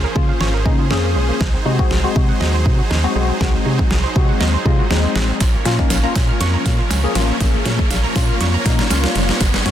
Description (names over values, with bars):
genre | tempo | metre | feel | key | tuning
dance-pop | 120 BPM | 4/4 | straight | unclear | A4 = 440 Hz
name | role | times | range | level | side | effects
supersaw chords | sustained chords | 0.0-9.7 s | F3 to Db5 | -25 LUFS | right 2 dB | sidechain pumping
hollow square pluck | arpeggios | 0.0-9.7 s | F3 to F6 | -28 LUFS | right 9 dB | chorus, sidechain pumping, digital delay
organ-like FM bass | bass | 0.0-9.7 s | F1 to Db3 | -19 LUFS | equal | sidechain pumping
riser | sound effects | 1.4-9.7 s | none | -28 LUFS | equal | none
tine electric piano | accompaniment | 0.2-9.7 s | Ab3 to Bb5 | -23 LUFS | left 6 dB | analog chorus, sidechain pumping
pop drum kit | drums | 0.2-9.7 s | hi-hat, kick drum, snare drum | -18 LUFS | equal | soft clipping on snare
tambourine | percussion | 5.4-9.7 s | none | -32 LUFS | right 14 dB | none
room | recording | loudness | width
little or no reverb | dense, heavily limited modern master | -14 LUFS | side -11 dB against mid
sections
0.0-9.7 A section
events
build-up 0.0-9.7; drum fill 0.0-9.7; riser 1.4-9.7; tine electric piano fill 8.4-9.4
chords
0.0 Db6; 1.4 Ab7; 5.4 Bbm